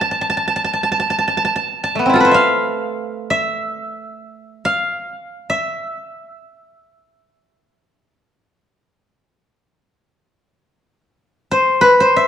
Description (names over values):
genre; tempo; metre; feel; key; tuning
japanese traditional, Japanese chamber music; free time; none; none; E miyako bushi; A4 = 440 Hz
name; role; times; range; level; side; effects
koto; solo; 0.0-12.3 s; A3 to A5; -15 LUFS; equal; none
room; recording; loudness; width
moderate recital hall reverb, RT60 1.5 s; dark, warm production; -15 LUFS; side -9 dB against mid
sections
0.0-12.3 A section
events
none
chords
none